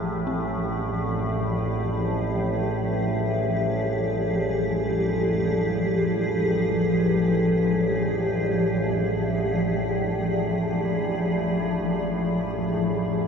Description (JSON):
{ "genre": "ambient", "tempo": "free time", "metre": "none", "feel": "none", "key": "unclear", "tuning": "A4 = 441 Hz", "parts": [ { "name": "granular cloud pad", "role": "sustained chords", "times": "0.0-13.3 s", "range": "F3 to D5", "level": "-24 LUFS", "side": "equal", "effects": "built-in reverb, shimmer reverb" }, { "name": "dark detuned synth bell", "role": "arpeggios", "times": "0.0-13.3 s", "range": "C4 to E4", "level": "-39 LUFS", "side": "equal", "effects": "chorus, phaser, diffuse ambient delay, shimmer reverb" }, { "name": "overtone-sweeping drone", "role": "drone", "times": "0.0-13.3 s", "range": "A1 to A2", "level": "-26 LUFS", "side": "equal", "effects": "chorus, built-in reverb" }, { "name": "bronze singing bowl", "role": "texture", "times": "0.0-13.3 s", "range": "none", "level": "barely audible", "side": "none", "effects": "none" } ], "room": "wet cathedral reverb, RT60 4.9 s", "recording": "dark, warm production", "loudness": "-22 LUFS", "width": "side -6 dB against mid", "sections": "0.0-13.3 A section", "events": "fade-out on synth bell 0.0-13.3", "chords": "0.0 Fmadd9" }